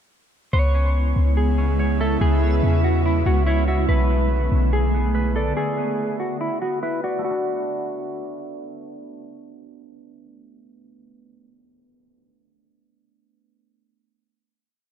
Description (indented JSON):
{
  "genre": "hip hop, atmospheric cloud-rap",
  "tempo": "143 BPM",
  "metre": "4/4",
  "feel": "half-time",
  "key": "B dorian",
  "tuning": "A4 = 441 Hz",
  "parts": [
    { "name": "mellow electric guitar", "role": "melody", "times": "0.5-8.5 s", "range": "E4 to C#5", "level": "-26 LUFS", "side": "left 1 dB", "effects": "analog chorus, low-pass filter, tape echo" },
    { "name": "ethereal airy pad", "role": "sustained chords", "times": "0.9-5.6 s", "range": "C#3 to E4", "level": "-26 LUFS", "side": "right 2 dB", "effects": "ensemble chorus, built-in reverb" },
    { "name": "concert harp", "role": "arpeggios", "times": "0.5-11.6 s", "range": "A3 to E5", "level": "-31 LUFS", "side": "right 3 dB", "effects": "low-pass filter, tape echo" },
    { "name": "clean 808-style bass", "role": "bass", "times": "0.5-5.5 s", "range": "B1 to E2", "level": "-19 LUFS", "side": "equal", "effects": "none" },
    { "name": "backwards swelling texture", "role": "texture", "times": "1.5-3.9 s", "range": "C#4 to E5", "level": "-35 LUFS", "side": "equal", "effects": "built-in reverb" }
  ],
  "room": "light reverb, digital ambience",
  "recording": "low-pass filter",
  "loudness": "-19 LUFS",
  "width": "side -8 dB against mid",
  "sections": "0.5-7.2 breakdown; 7.2-10.6 final chord",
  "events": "none",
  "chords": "0.5 C#m7; 3.9 Bm7"
}